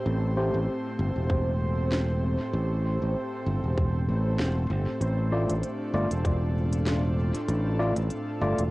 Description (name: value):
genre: ambient dub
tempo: 97 BPM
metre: 4/4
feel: swing 55% on 16ths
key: A minor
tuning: A4 = 440 Hz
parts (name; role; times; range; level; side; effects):
- airy breathy pad; sustained chords; 0.0-8.7 s; A2 to C5; -32 LUFS; equal; chorus
- bubbling stepped-filter texture; texture; 0.0-8.7 s; C4 to C5; -37 LUFS; right 2 dB; chorus, built-in reverb
- modern bright fingered electric bass; bass; 0.1-8.7 s; E1 to A1; -26 LUFS; equal; none
- overdriven tine electric piano; stabs; 0.4-0.6, 5.3-8.6 s; A3 to D5; -31 LUFS; left 1 dB; dub echo
- electronic kick drum; drums; 1.3-6.4 s; none; -27 LUFS; equal; cassette tape
- organic electronic drum kit; drums; 1.9-8.7 s; hi-hat, snare drum; -35 LUFS; equal; cassette tape, dub echo
room: light reverb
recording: home recording on cassette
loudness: -25 LUFS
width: side -20 dB against mid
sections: 0.0-8.7 A section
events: none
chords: 0.0 Am7; 5.0 Dm